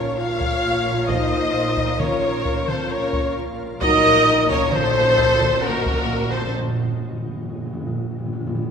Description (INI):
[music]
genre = cinematic, suspense film score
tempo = 66 BPM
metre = 3/4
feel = straight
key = unclear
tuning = A4 = 440 Hz
[part]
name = warm studio violin section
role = melody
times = 0.0-6.5 s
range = Bb4 to F5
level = -28 LUFS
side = left 4 dB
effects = none
[part]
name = rich chamber violin section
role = second line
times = 0.0-6.5 s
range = Gb4 to Db5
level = -26 LUFS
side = left 5 dB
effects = none
[part]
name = rich chamber viola section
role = accompaniment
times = 0.0-6.5 s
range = Bb4 to F5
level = -22 LUFS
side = right 2 dB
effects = none
[part]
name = mellow French horn section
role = sustained chords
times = 0.0-6.5 s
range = Bb3 to C5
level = -24 LUFS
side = left 3 dB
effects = none
[part]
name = soft additive organ-like pad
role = sustained chords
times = 0.0-6.5 s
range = Db4 to F5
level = -31 LUFS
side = left 1 dB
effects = ensemble chorus, built-in reverb
[part]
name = rich chamber double bass section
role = bass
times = 0.0-6.5 s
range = Bb1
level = -32 LUFS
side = right 2 dB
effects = none
[part]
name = warm chamber cello section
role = bass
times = 0.0-6.5 s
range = Bb2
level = -29 LUFS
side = right 5 dB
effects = none
[part]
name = clear concert grand piano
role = texture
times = 0.0-3.8 s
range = none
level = barely audible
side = none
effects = none
[part]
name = taiko ensemble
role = drums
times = 0.4-6.5 s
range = none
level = -29 LUFS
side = equal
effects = none
[part]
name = mellow trombone section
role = sustained chords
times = 1.1-4.2 s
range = F3 to F4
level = -29 LUFS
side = right 2 dB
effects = none
[part]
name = timpani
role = percussion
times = 3.8-8.7 s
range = Bb2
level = -27 LUFS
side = right 1 dB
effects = none
[sound]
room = wet concert hall reverb, RT60 2.2 s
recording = none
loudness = -18 LUFS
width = side -6 dB against mid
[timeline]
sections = 0.0-8.7 A section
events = timpani fill 3.8-8.7; break 6.5-8.7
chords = 0.0 Bbm; 3.8 Ebm7/Bb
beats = 0.18 | 1.09 2.00 2.91 | 3.82 4.73 5.64 | 6.54 7.45 8.36